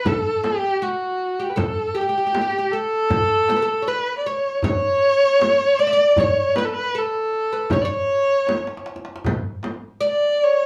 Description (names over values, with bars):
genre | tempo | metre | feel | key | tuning
Persian modal ensemble | 78 BPM | 4/4 | straight | unclear | A4 = 440 Hz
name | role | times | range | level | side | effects
warm kamancheh | melody | 0.0-10.7 s | F#4 to D5 | -21 LUFS | equal | none
oud | second line | 0.0-10.7 s | F#4 to E5 | -27 LUFS | equal | none
frame drum | percussion | 0.1-9.8 s | none | -28 LUFS | equal | none
tombak | percussion | 0.1-10.1 s | none | -32 LUFS | equal | none
room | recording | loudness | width
moderate studio reverb, RT60 0.5 s | small room reverb | -20 LUFS | mono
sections
0.0-10.7 A section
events
drum fill 8.5-9.2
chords
none